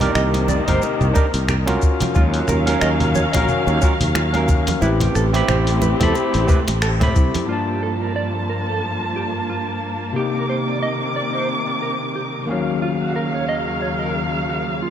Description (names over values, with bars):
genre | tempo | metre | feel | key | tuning
sunset chillout | 90 BPM | 4/4 | swing 56% on 16ths | G minor | A4 = 439 Hz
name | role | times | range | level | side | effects
overdriven tine electric piano | accompaniment | 0.0-14.9 s | G2 to B5 | -22 LUFS | moving between left 4 dB and right 3 dB | auto-pan, digital delay, shimmer reverb
dark chamber string section | sustained chords | 0.0-14.9 s | Eb2 to D6 | -24 LUFS | left 1 dB | shimmer reverb
mellow electric guitar | arpeggios | 0.0-14.9 s | E4 to Eb5 | -27 LUFS | right 4 dB | tremolo, low-pass filter, digital delay, shimmer reverb
sustaining fretless electric bass | bass | 0.0-7.3 s | G1 to A2 | -20 LUFS | equal | none
dusty soul sampler-style drum kit | drums | 0.0-7.5 s | congas, finger snaps, hi-hat, shaker | -25 LUFS | right 1 dB | studio reverb
congas | percussion | 0.0-7.5 s | none | -28 LUFS | right 4 dB | none
electronic kick drum | drums | 0.7-7.3 s | none | -17 LUFS | equal | studio reverb
room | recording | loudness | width
light reverb | none | -17 LUFS | side -10 dB against mid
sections
0.0-7.5 A section; 7.5-14.9 B section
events
band accent 6.8-7.2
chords
0.0 Cm9; 1.8 Ebm9; 4.8 Am9; 7.5 Gm9; 10.2 Cm9; 12.5 Ebm9